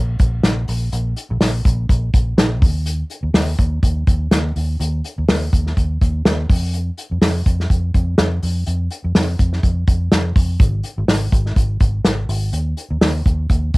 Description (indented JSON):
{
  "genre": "piano-driven pop",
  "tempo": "124 BPM",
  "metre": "4/4",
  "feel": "swing 56% on 16ths",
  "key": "unclear",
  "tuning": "A4 = 437 Hz",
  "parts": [
    { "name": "vintage muted fingered electric bass", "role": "bass", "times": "0.0-13.8 s", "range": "Ab1 to F2", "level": "-19 LUFS", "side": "equal", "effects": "none" },
    { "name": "unplugged drum kit", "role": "drums", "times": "0.2-13.8 s", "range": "hi-hat, kick drum, snare drum", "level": "-16 LUFS", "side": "equal", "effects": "cassette tape" }
  ],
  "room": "light reverb",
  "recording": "home recording on cassette",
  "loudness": "-15 LUFS",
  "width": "side -23 dB against mid",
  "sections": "0.0-13.8 A section",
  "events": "none",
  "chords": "none"
}